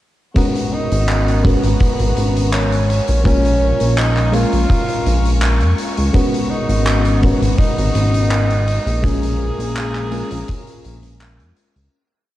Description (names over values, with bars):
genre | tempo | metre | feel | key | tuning
vaporwave | 83 BPM | 4/4 | straight | G# dorian | A4 = 440 Hz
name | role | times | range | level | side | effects
mellow FM electric piano | accompaniment | 0.3-11.9 s | G#3 to A#4 | -21 LUFS | left 1 dB | wide subtle chorus, cassette tape
breathy tenor saxophone | melody | 0.4-11.2 s | B3 to G#4 | -23 LUFS | right 1 dB | tape echo
dark chamber string section | sustained chords | 0.4-11.9 s | B3 to C#6 | -31 LUFS | left 1 dB | none
kick drum | drums | 0.4-10.6 s | none | -19 LUFS | equal | vintage 12-bit sampler grit
oversized low-tuned drum kit | drums | 0.4-11.9 s | handclaps, hi-hat | -25 LUFS | equal | vintage 12-bit sampler grit, gated reverb
chorused synth bass | bass | 0.9-11.9 s | G#1 to E#2 | -17 LUFS | equal | tube saturation
room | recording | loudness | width
light reverb, studio ambience | cassette tape | -14 LUFS | side -14 dB against mid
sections
0.4-11.9 groove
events
fade-out 8.1-11.9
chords
0.4 G#m11; 3.3 A#m7; 6.1 G#m11; 9.0 A#m7